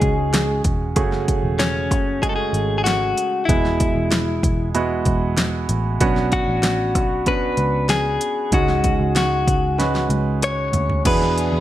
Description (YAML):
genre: piano-driven pop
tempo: 95 BPM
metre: 4/4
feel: straight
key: F# minor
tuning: A4 = 441 Hz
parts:
  - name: direct-recorded clean electric guitar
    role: melody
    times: 0.0-11.6 s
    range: C#4 to C#5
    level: -22 LUFS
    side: left 3 dB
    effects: none
  - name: clear concert grand piano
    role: accompaniment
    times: 0.0-11.6 s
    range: G#2 to B4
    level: -23 LUFS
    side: right 5 dB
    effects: none
  - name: vintage muted picked electric bass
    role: bass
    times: 0.0-11.6 s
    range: E1 to E2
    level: -23 LUFS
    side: equal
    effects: none
  - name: deep house drum kit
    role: drums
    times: 0.0-11.5 s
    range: crash cymbal, hi-hat, kick drum, snare drum, toms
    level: -22 LUFS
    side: equal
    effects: none
  - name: dark studio string section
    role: sustained chords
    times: 11.1-11.6 s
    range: E3 to G#4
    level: -28 LUFS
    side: equal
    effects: none
room: moderate large studio reverb, RT60 1.2 s, digital ambience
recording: none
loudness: -17 LUFS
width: side -13 dB against mid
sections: 0.0-11.1 A section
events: drum fill 9.8-11.1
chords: 0.0 C#sus4; 1.0 F#madd9; 3.5 E; 6.0 Bmadd9; 8.5 C#sus4; 11.1 E7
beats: 0.33 | 0.96 1.59 2.22 2.85 | 3.48 4.11 4.75 5.38 | 6.01 6.64 7.27 7.90 | 8.53 9.16 9.79 10.42 | 11.06